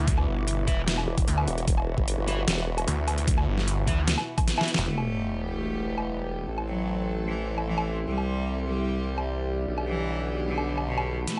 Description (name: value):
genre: heavy wobble dubstep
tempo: 150 BPM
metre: 4/4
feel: half-time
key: E minor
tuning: A4 = 440 Hz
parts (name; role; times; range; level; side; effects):
- warm chamber string section; sustained chords; 0.0-11.4 s; B2 to A4; -39 LUFS; equal; sidechain pumping, low-pass filter
- snarling distorted saw bass; bass; 0.0-4.9 s; E1 to D2; -29 LUFS; equal; distortion, overdrive
- warbly tape-like pad; texture; 0.0-11.4 s; C4 to D6; -40 LUFS; equal; chorus, built-in reverb, sidechain pumping
- dubstep drum kit; drums; 0.1-11.4 s; hi-hat, snare drum, woodblock; -31 LUFS; equal; overdrive
- electronic kick drum; drums; 0.1-4.5 s; none; -28 LUFS; equal; overdrive
- fuzz guitar; stabs; 0.7-4.7 s; E4 to E5; -37 LUFS; equal; distortion, digital delay
- formant-sweep wobble bass; bass; 1.1-11.3 s; E1 to C2; -33 LUFS; equal; chorus, overdrive
- bright cello; melody; 4.9-11.4 s; B2 to A3; -35 LUFS; equal; digital delay
- sub drop and riser; sound effects; 4.9-6.5, 11.3-11.4 s; none; -37 LUFS; equal; none
room: digital ambience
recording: nothing above 11.0 kHz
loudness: -27 LUFS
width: mono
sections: 0.0-4.9 A section; 4.9-11.3 B section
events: drop 0.0-4.9; drum fill 4.5-4.9; impact 4.9-6.5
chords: 0.0 E5; 4.9 Em; 6.5 Am; 8.1 C; 9.7 G/B